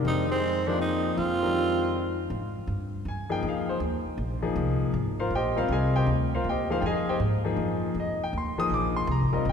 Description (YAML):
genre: modal jazz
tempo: 159 BPM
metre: 3/4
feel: swing 66% on 8ths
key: F dorian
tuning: A4 = 440 Hz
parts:
  - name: warm concert grand piano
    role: accompaniment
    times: 0.0-9.5 s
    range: Eb3 to Eb6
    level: -28 LUFS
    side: left 2 dB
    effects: none
  - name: upright bass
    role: bass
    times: 0.0-9.5 s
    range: F1 to Ab2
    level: -29 LUFS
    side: equal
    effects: none
  - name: growling tenor saxophone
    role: melody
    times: 0.1-2.2 s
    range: C4 to F4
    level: -28 LUFS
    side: right 2 dB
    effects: none
  - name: brilliant trombone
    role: second line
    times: 0.1-2.2 s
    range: Ab3 to C4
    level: -33 LUFS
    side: right 5 dB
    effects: none
room: wet church reverb, RT60 2.8 s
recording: recorded in a church or concert hall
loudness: -25 LUFS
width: side -7 dB against mid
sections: 0.0-2.3 A section; 2.3-9.5 B section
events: none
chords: 0.0 Fm11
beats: | 0.05 0.42 0.80 | 1.18 1.55 1.93 | 2.30 2.68 3.06 | 3.43 3.81 4.18 | 4.56 4.94 5.31 | 5.69 6.07 6.44 | 6.82 7.20 7.57 | 7.95 8.33 8.70 | 9.08 9.46